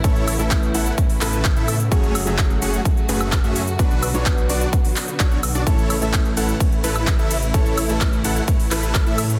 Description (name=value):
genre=EDM, festival progressive house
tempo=128 BPM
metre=4/4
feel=straight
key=A major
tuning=A4 = 440 Hz
part: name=warm grand piano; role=accompaniment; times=0.0-9.4 s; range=A2 to B4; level=-30 LUFS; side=equal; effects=sidechain pumping, delay
part: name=warm symphonic string section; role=sustained chords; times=0.0-9.4 s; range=C#3 to G#4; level=-32 LUFS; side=equal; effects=sidechain pumping
part: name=dense compressed supersaw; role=riff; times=0.0-9.3 s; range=A3 to F#5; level=-28 LUFS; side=equal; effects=sidechain pumping, delay
part: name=detuned saw bass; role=bass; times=0.0-9.4 s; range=F#1 to A2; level=-26 LUFS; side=equal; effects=sidechain pumping
part: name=big-room dance drum kit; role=drums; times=0.0-9.4 s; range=handclaps, hi-hat, ride cymbal, shaker, woodblock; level=-28 LUFS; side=equal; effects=none
part: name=electronic kick drum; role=drums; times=0.0-9.0 s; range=none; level=-21 LUFS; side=equal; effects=none
room=digital ambience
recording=dense, heavily limited modern master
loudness=-19 LUFS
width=mono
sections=0.0-9.4 A section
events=none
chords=0.0 A; 1.9 F#madd9; 3.8 Bm; 5.7 A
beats=| 0.04 0.51 0.98 1.45 | 1.92 2.38 2.85 3.32 | 3.79 4.26 4.73 5.20 | 5.67 6.13 6.60 7.07 | 7.54 8.01 8.48 8.95